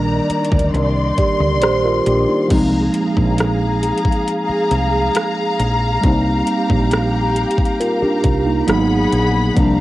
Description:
contemporary R&B; 68 BPM; 4/4; straight; A4 = 441 Hz
mellow tine electric piano; accompaniment; 0.0-9.8 s; Eb3 to D5; -18 LUFS; right 1 dB; auto-pan, cassette tape
warm studio string section; sustained chords; 0.0-9.8 s; Eb3 to C6; -20 LUFS; left 1 dB; cassette tape
woody fretless electric bass; bass; 0.0-9.8 s; Ab1 to D2; -20 LUFS; equal
trap drum kit; drums; 0.3-9.8 s; crash cymbal, hi-hat, kick drum, rim click; -20 LUFS; equal; cassette tape
little or no reverb; home recording on cassette; -14 LUFS; side -16 dB against mid
0.0-2.5 A section; 2.5-9.8 B section
0.0 Cm9; 2.5 Bb7sus4; 6.0 F9sus4; 8.7 Abm7

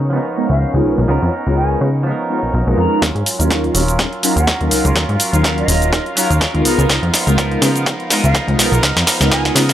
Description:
filtered disco house; 124 BPM; 4/4; swing 56% on 16ths; Eb minor; A4 = 440 Hz
clear symphonic string section; sustained chords; 0.0-9.7 s; Db4 to F5; -27 LUFS; left 3 dB; sidechain pumping, low-pass filter
direct-recorded clean electric guitar; riff; 0.0-9.7 s; F3 to Bb4; -22 LUFS; right 3 dB; lush chorus, sidechain pumping, low-pass filter
plucky analog bass; bass; 0.0-9.7 s; Eb1 to Db3; -16 LUFS; equal; sidechain pumping, low-pass filter
mellow synth brass; accompaniment; 0.1-9.6 s; Gb3 to Db5; -20 LUFS; equal; chorus, phaser, cassette tape, sidechain pumping, low-pass filter
breathy mellow jazz flute; melody; 0.5-9.5 s; Eb5 to Bb5; -24 LUFS; equal; sidechain pumping, low-pass filter, tape echo
electronic kick drum; drums; 3.0-9.4 s; -22 LUFS; equal; high-pass filter on kick
punchy analog drum machine; drums; 3.0-9.7 s; hi-hat, shaker, snare drum; -17 LUFS; equal; high-pass filter on snare, sidechain pumping on hats, high-pass filter on hats, sidechain pumping on perc, high-pass filter on perc
little or no reverb; dry, gritty hardware recording, transformer saturation; -13 LUFS; side -11 dB against mid
0.0-3.0 A section; 3.0-9.7 B section
build-up 3.0-9.7; drum fill 3.0-9.7; filter sweep 3.0-9.7
0.0 Db13; 3.0 Ebm9; 6.7 Db13

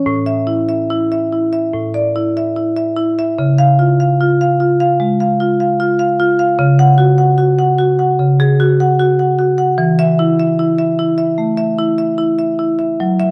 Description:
classical, contemporary piece for solo marimba; 74 BPM; 4/4; rubato; A4 = 440 Hz
marimba with medium hard mallets; solo; 0.0-13.3 s; A2 to F#5; -14 LUFS; equal
moderate stone room reverb, RT60 1.1 s; dark, warm production; -14 LUFS; mono
0.0-13.3 A section
0.1 Esus4/A; 3.4 C#; 6.6 G#7sus4/C# (rootless); 9.8 N.C.

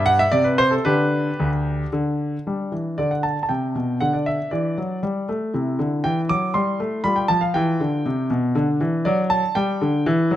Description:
classical-period piano sonatina; 118 BPM; 3/4; rubato; G major; A4 = 440 Hz
clear grand piano; solo; 0.0-10.4 s; D2 to D6; -19 LUFS; equal
light reverb; close, detailed microphones; -19 LUFS; side -12 dB against mid
0.0-2.5 A section; 2.5-10.4 B section
0.3 N.C.; 0.9 G/D; 1.9 N.C.; 2.5 G; 4.0 D; 5.0 G5; 5.5 C; 7.0 G5; 8.1 C5; 8.6 D; 9.6 G5

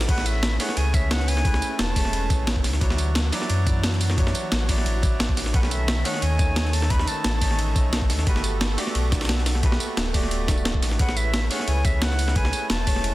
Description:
liquid drum and bass; 176 BPM; 4/4; straight; A major; A4 = 438 Hz
bright concert grand piano; accompaniment; 0.0-13.1 s; D#3 to D5; -31 LUFS; right 1 dB; tape echo
warm analog pad; sustained chords; 0.0-13.1 s; D#3 to B4; -35 LUFS; right 1 dB; chorus, sidechain pumping
sub bass with octave; bass; 0.0-13.1 s; D1 to F#2; -24 LUFS; equal; tube saturation
breakbeat sampler-style drum kit; drums; 0.0-13.1 s; ride cymbal, snare drum; -32 LUFS; right 1 dB; high-pass filter on cymbals, high-pass filter on snare
breathy bright concert flute; melody; 0.1-2.5, 5.5-8.1, 11.0-13.1 s; E5 to B5; -30 LUFS; left 1 dB; tape echo
breakbeat sampler-style drum kit; drums; 0.1-13.1 s; crash cymbal, hi-hat, snare drum, tambourine; -28 LUFS; right 1 dB
electronic kick drum; drums; 0.1-12.9 s; -24 LUFS; equal
digital ambience; dense, heavily limited modern master; -20 LUFS; side -17 dB against mid
0.1-13.1 A section
drop 0.1-13.1
0.1 Amaj9; 2.6 Dmaj9; 5.5 B9; 8.3 Gmaj9; 11.0 Amaj9

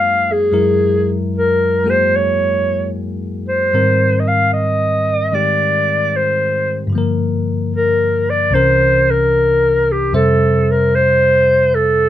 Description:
jazz ballad; 75 BPM; 4/4; swing 69% on 8ths; A4 = 440 Hz
warm clarinet; melody; 0.0-12.1 s; G4 to F5; -14 LUFS; equal
bell-like tine electric piano; accompaniment; 0.0-12.1 s; C2 to E5; -18 LUFS; left 1 dB
moderate small room reverb, RT60 0.6 s; -12 LUFS; side -12 dB against mid
0.0-12.1 A section
0.0 Gb69; 0.5 Gb9; 3.7 Abmaj7; 6.9 Gm7; 8.5 C7b9; 10.1 Fmaj7

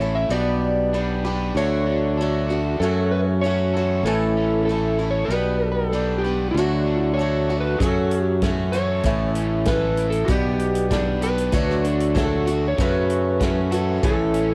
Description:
folk rock and heartland rock; 96 BPM; 4/4; straight; A4 = 441 Hz
electric slide guitar; melody; 0.0-14.5 s; F#4 to E5; -27 LUFS; equal; cassette tape
picked swing-style acoustic guitar; accompaniment; 0.0-14.5 s; F#2 to A4; -27 LUFS; equal; cassette tape
crunchy overdriven guitar; riff; 0.0-14.5 s; A2 to B4; -33 LUFS; equal; cassette tape
modern bright fingered electric bass; bass; 0.0-14.5 s; A1 to F#2; -26 LUFS; equal
natural country drum kit; drums; 7.8-14.5 s; hi-hat, kick drum, snare drum; -28 LUFS; equal; cassette tape
light reverb, small room ambience; home recording on cassette; -21 LUFS; mono
0.0-14.5 A section
0.3 G/B; 1.6 D; 2.8 F#m; 4.1 A; 5.3 G/B; 6.5 D; 7.8 F#m; 9.0 A; 10.3 G/B; 11.5 D; 12.8 F#m; 14.0 A

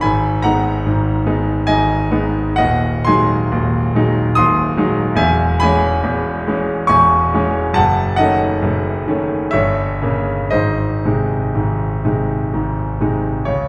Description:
classical, romantic nocturne for solo piano; 58-74 BPM; 3/4; rubato; A4 = 442 Hz
bright concert grand piano; solo; 0.0-13.7 s; D#1 to D#6; -16 LUFS; equal
wet recital hall reverb, RT60 1.6 s; heard from further back in the room; -17 LUFS; mono
0.0-13.5 A section
0.0 G#m; 2.6 G#7/D#; 5.2 C#m/E; 7.8 D#m7b5/F#; 9.5 Gdim7; 10.5 G#

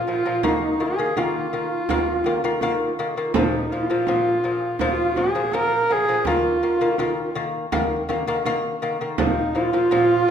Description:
mongolian traditional, Mongolian folk; 82 BPM; 4/4; straight; A4 = 439 Hz
warm horsehead fiddle; melody; 0.0-10.3 s; Eb4 to Bb4; -23 LUFS; equal
mellow xiao; second line; 0.0-10.3 s; Eb4 to Bb4; -25 LUFS; right 2 dB
lute; arpeggios; 0.1-10.3 s; Bb2 to Bb3; -24 LUFS; left 3 dB
frame drum; percussion; 0.4-10.1 s; -27 LUFS; right 4 dB
wet recital hall reverb, RT60 1.3 s; minimal, uncompressed stereo recording; -19 LUFS; side -8 dB against mid
0.0-10.3 A section
0.4 Eb5; 3.4 Bb5; 6.3 Eb5; 9.2 Bb5

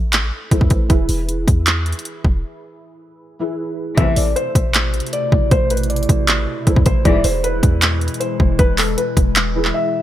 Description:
hip hop, trap; 156 BPM; 4/4; half-time; A harmonic minor; A4 = 438 Hz
felt-muted upright piano; accompaniment; 0.0-10.0 s; E3 to C5; -27 LUFS; right 1 dB; ensemble chorus, low-pass filter
clean 808-style bass; bass; 0.0-9.7 s; E1 to E2; -19 LUFS; equal
trap drum kit; drums; 0.1-9.7 s; handclaps, hi-hat, kick drum; -16 LUFS; equal; overdrive
felt-muted upright piano; melody; 4.0-10.0 s; A4 to E5; -22 LUFS; left 1 dB; wide subtle chorus, low-pass filter, digital delay
warbly tape-like pad; sustained chords; 4.3-10.0 s; B2 to E4; -25 LUFS; equal; chorus, built-in reverb
dark symphonic string section; stabs; 4.0-4.2, 7.1-7.3 s; E2 to E3; -23 LUFS; left 5 dB
light reverb; bright 1980s-style digital production; -14 LUFS; side -12 dB against mid
0.0-4.0 A section; 4.0-10.0 B section
break 2.4-4.0; drums muted 9.7
0.0 Amadd9; 0.9 E; 4.0 Amadd9; 7.1 E

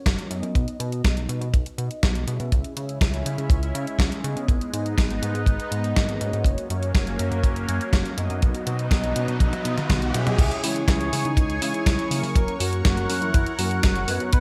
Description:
italo disco; 122 BPM; 4/4; straight; C# dorian; A4 = 439 Hz
mellow synth brass; stabs; 0.0-14.4 s; F#3 to F#5; -35 LUFS; equal; chorus, delay
chorused synth bass; bass; 0.1-14.4 s; F#1 to C#3; -30 LUFS; equal; tube saturation
clean 12-bit digital drum machine; drums; 0.1-14.4 s; crash cymbal, hi-hat, snare drum, toms; -30 LUFS; equal; studio reverb, gated reverb
kick drum; drums; 0.1-14.4 s; -22 LUFS; equal; studio reverb
lush unison pad; sustained chords; 2.5-14.4 s; F#3 to D#6; -33 LUFS; equal; chorus, phaser
riser; sound effects; 8.2-10.4 s; -37 LUFS; equal
soft octave-layered synth lead; melody; 10.4-14.4 s; D#4 to B4; -32 LUFS; equal; chorus, delay
moderate plate reverb, RT60 1.2 s; bright 1980s-style digital production; -23 LUFS; mono
0.0-10.4 A section; 10.4-14.4 B section
filter sweep on analog polysynth 0.0-10.4; riser 8.2-10.4; drum fill 9.4-10.4
0.0 F#; 0.6 B; 2.5 C#m; 4.5 G#m; 6.5 F#; 8.4 B; 10.4 C#m; 12.4 F#

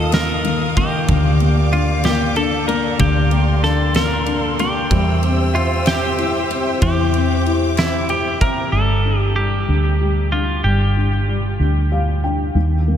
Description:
six-eight pop ballad; 63 BPM (dotted quarters); 6/8; straight; G minor; A4 = 443 Hz
twelve-string electric guitar; melody; 0.0-12.2 s; E4 to Bb4; -22 LUFS; right 1 dB; spring reverb, tape echo
felt-muted upright piano; accompaniment; 0.0-13.0 s; D3 to G5; -21 LUFS; left 4 dB; lush chorus
warm symphonic string section; sustained chords; 0.0-8.7 s; Bb3 to E6; -26 LUFS; equal
vintage muted fingered electric bass; bass; 0.0-13.0 s; G1 to E2; -19 LUFS; right 1 dB
huge arena drum kit; drums; 0.1-8.6 s; kick drum, ride cymbal, snare drum; -23 LUFS; right 1 dB
moderate huge ambient reverb, RT60 6.1 s; dreamy mix soaked in reverb; -15 LUFS; side -9 dB against mid
0.0-8.7 A section; 8.7-13.0 B section
felt piano fill 7.8-8.7, 11.6-12.6
0.0 Ebsus2; 1.1 Bb/D; 4.9 C/E; 8.7 G5

